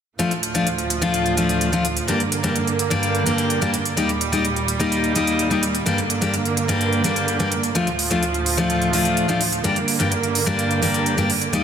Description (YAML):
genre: EDM, festival progressive house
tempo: 127 BPM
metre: 4/4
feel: straight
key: G minor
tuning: A4 = 440 Hz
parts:
  - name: fingerpicked steel-string acoustic guitar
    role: accompaniment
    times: 0.2-11.6 s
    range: G2 to G4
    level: -20 LUFS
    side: left 2 dB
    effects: tape echo
  - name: rich studio string section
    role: sustained chords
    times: 0.2-11.6 s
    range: D2 to Bb3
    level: -24 LUFS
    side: right 4 dB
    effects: none
  - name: electronic hi-hat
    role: drums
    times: 0.2-11.6 s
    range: none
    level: -26 LUFS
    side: right 2 dB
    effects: overdrive
room: moderate lush hall reverb, RT60 1.9 s, small room ambience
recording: dense, heavily limited modern master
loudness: -18 LUFS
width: side -8 dB against mid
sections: 0.2-11.6 A section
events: none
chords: 0.2 Dm; 2.1 Gm; 4.0 Eb; 5.9 Gm; 7.8 Dm; 9.6 Gm